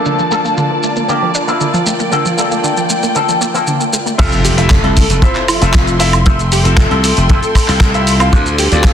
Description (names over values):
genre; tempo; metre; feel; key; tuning
nu-disco, nu disco; 116 BPM; 4/4; straight; F major; A4 = 440 Hz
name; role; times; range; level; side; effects
bright grand piano; accompaniment; 0.0-8.9 s; F3 to F5; -21 LUFS; left 1 dB; vintage 12-bit sampler grit, sidechain pumping, tape echo
dark studio string section; sustained chords; 0.0-8.9 s; Bb3 to C6; -20 LUFS; left 1 dB; sidechain pumping
electric guitar with an envelope filter; riff; 0.0-8.6 s; Bb3 to C5; -19 LUFS; left 2 dB; lush chorus, tape echo
wide unison pluck; arpeggios; 0.1-4.1 s; D3 to D4; -18 LUFS; right 2 dB; sidechain pumping, dub echo
dusty soul sampler-style drum kit; drums; 0.1-8.9 s; crash cymbal, handclaps, hi-hat, shaker, woodblock; -18 LUFS; right 1 dB; none
glassy slap bass; bass; 4.2-8.9 s; F1 to D2; -14 LUFS; equal; none
kick drum; drums; 4.2-8.9 s; none; -11 LUFS; equal; none
impact; sound effects; 4.3-6.3 s; none; -21 LUFS; equal; none
wide unison lead; melody; 4.4-8.9 s; F4 to C5; -20 LUFS; equal; dub echo
room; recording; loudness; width
moderate echo chamber reverb, RT60 2.2 s; dense, heavily limited modern master, low-pass filter; -10 LUFS; side -9 dB against mid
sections
0.0-4.2 A section; 4.2-8.9 B section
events
filter sweep 0.0-4.2; drop 4.2-8.9; impact 4.2-6.3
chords
0.0 Bbmaj7; 4.2 Fmaj7; 8.3 Dm7